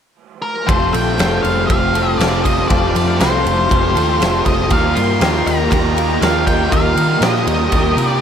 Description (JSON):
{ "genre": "rock, shoegaze and dream pop", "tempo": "120 BPM", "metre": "4/4", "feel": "straight", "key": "F mixolydian", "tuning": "A4 = 440 Hz", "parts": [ { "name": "octave-fuzz lead guitar", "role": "melody", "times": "0.4-8.2 s", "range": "Bb4 to C6", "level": "-20 LUFS", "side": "left 1 dB", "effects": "distortion, tape echo" }, { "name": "phased string machine", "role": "sustained chords", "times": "0.7-8.2 s", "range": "G4 to Eb6", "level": "-28 LUFS", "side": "equal", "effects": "none" }, { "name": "picked twelve-string acoustic guitar", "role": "arpeggios", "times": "0.7-8.2 s", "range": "F3 to G4", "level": "-26 LUFS", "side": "left 6 dB", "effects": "ensemble chorus, tape echo" }, { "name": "electric guitar through a small old amp", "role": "riff", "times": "0.7-8.2 s", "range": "Eb3 to C5", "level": "-20 LUFS", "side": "right 11 dB", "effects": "reverse reverb" }, { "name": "overdriven electric guitar", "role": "riff", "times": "0.7-8.2 s", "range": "Eb3 to Bb4", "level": "-21 LUFS", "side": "left 10 dB", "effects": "analog chorus" }, { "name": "vintage muted fingered electric bass", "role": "bass", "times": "0.7-8.2 s", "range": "F1 to Eb3", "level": "-20 LUFS", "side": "equal", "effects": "none" }, { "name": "huge arena drum kit", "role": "drums", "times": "0.7-8.1 s", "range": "kick drum, ride cymbal, snare drum", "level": "-18 LUFS", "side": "equal", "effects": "none" } ], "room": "light reverb, small room ambience", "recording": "none", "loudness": "-13 LUFS", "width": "side -8 dB against mid", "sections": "0.7-8.2 A section", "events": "none", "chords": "0.0 N.C.; 0.7 Fadd9; 4.7 Ebadd9", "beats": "0.18 | 0.69 1.19 1.69 2.20 | 2.70 3.20 3.71 4.21 | 4.71 5.21 5.71 6.21 | 6.71 7.21 7.72" }